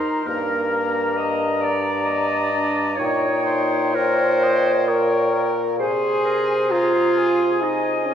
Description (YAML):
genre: classical, slow romantic movement for wind quintet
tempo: 66 BPM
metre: 3/4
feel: rubato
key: Ab major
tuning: A4 = 440 Hz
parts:
  - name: hollow concert flute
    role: melody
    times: 0.0-8.1 s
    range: G5 to Bb5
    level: -28 LUFS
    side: left 4 dB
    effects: none
  - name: clear oboe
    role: second line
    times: 0.0-8.1 s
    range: Ab4 to Eb5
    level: -26 LUFS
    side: left 3 dB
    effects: none
  - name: clear French horn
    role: accompaniment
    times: 0.0-8.1 s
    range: Bb3 to C5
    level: -22 LUFS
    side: right 1 dB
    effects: none
  - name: warm clarinet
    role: accompaniment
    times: 0.0-8.1 s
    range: Ab4 to Eb5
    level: -26 LUFS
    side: right 2 dB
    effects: none
  - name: mellow bassoon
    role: bass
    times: 0.3-8.1 s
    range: G2 to C3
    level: -24 LUFS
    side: left 1 dB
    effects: none
room: wet church reverb, RT60 2.9 s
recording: recorded in a church or concert hall, nothing above 10.9 kHz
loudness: -18 LUFS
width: side -9 dB against mid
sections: 0.0-8.1 A section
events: none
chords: 0.3 Eb/G; 3.0 Eb7/Bb; 5.8 Ab/C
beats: | 0.28 1.18 2.09 | 2.99 3.98 4.90 | 5.80 6.72 7.64